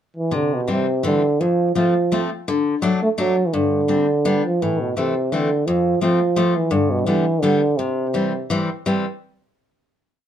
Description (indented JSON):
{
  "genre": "alpine folk, alpine dance band",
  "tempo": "169 BPM",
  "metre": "3/4",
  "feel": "swing 53% on 8ths, rubato",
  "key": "C major",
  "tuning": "A4 = 440 Hz",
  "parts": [
    { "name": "warm euphonium", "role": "melody", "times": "0.2-8.5 s", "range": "B2 to A3", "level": "-18 LUFS", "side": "right 1 dB", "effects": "plate reverb" },
    { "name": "picked steel-string acoustic guitar", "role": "accompaniment", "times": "0.3-9.0 s", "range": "F2 to D4", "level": "-22 LUFS", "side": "left 3 dB", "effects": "none" }
  ],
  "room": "moderate studio reverb, RT60 0.5 s",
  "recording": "dark, warm production",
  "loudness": "-17 LUFS",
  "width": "side -9 dB against mid",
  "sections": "0.0-0.3 pickup bar; 0.3-8.9 A section; 8.9-9.9 final chord",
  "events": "none",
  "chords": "0.3 Cadd9; 1.4 F; 2.5 D; 3.5 Gsus4; 4.2 G; 4.6 Am; 5.7 F; 6.7 G; 7.8 C",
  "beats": "| 0.32 0.68 1.05 | 1.41 1.76 2.12 | 2.47 2.82 3.17 | 3.53 3.88 4.24 | 4.60 4.96 5.31 | 5.67 6.02 6.37 | 6.72 7.07 7.43 | 7.79 8.14 8.51 | 8.88"
}